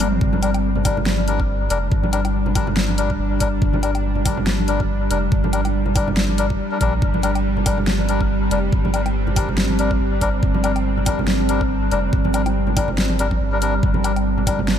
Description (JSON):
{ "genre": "deep dubstep", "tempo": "141 BPM", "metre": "4/4", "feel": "swing 56% on 16ths, half-time", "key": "G minor", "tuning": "A4 = 440 Hz", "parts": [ { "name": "bowed-like drone", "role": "sustained chords", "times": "0.0-14.8 s", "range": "G3 to D4", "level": "-24 LUFS", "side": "right 1 dB", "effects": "built-in reverb" }, { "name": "melodica", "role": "stabs", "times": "0.0-14.6 s", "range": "G3 to Bb4", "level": "-24 LUFS", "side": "left 4 dB", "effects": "dub echo" }, { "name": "soft dub sub bass", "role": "bass", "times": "0.0-14.8 s", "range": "F1 to Bb1", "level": "-22 LUFS", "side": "equal", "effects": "none" }, { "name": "dubstep drum kit", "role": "drums", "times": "0.0-14.8 s", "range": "hi-hat, snare drum, toms, woodblock", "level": "-25 LUFS", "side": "left 1 dB", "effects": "overdrive" }, { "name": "congas and bongos", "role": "percussion", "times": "0.0-14.7 s", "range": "none", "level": "-29 LUFS", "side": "right 2 dB", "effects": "dub echo" }, { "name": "electronic kick drum", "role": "drums", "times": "0.2-14.6 s", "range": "none", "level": "-21 LUFS", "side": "equal", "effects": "overdrive" } ], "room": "moderate lush hall reverb, RT60 2.0 s", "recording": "dreamy mix soaked in reverb", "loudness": "-17 LUFS", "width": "side -9 dB against mid", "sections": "0.2-14.8 A section", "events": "break 0.0; drum fill 0.0; drop 0.2-14.8; kick drops out 13.4-13.8", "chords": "0.2 Gm", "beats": "| 0.21 0.64 1.06 1.49 | 1.92 2.34 2.77 3.19 | 3.62 4.04 4.47 4.89 | 5.32 5.75 6.17 6.60 | 7.02 7.45 7.87 8.30 | 8.72 9.15 9.57 10.00 | 10.43 10.85 11.28 11.70 | 12.13 12.55 12.98 13.40 | 13.83 14.26 14.68" }